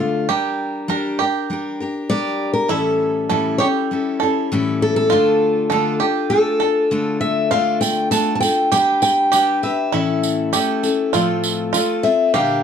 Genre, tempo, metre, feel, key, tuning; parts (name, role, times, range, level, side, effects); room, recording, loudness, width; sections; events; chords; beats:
acoustic folk duo or small band; 100 BPM; 4/4; straight; D harmonic minor, D minor from 7.5 s; A4 = 439 Hz
picked steel-string acoustic guitar; melody; 0.0-12.6 s; F4 to A5; -18 LUFS; left 1 dB; plate reverb
picked steel-string acoustic guitar; accompaniment; 0.0-12.6 s; A2 to B4; -21 LUFS; left 3 dB
bluegrass banjo; arpeggios; 0.3-12.6 s; E4 to Bb4; -22 LUFS; right 9 dB
tambourine; percussion; 7.8-12.1 s; -25 LUFS; right 7 dB
moderate studio ambience, RT60 0.5 s; dark, warm production; -16 LUFS; side -7 dB against mid
0.0-7.5 A section; 7.5-12.6 B section
steel-string acoustic guitar solo 0.0-7.5
0.3 Gm; 2.7 A7; 5.1 Dm; 8.7 G; 9.9 A; 11.1 F/A
| 0.28 0.89 1.49 2.09 | 2.69 3.30 3.90 4.50 | 5.10 5.71 6.31 6.91 | 7.51 8.12 8.72 9.32 | 9.92 10.53 11.13 11.73 | 12.33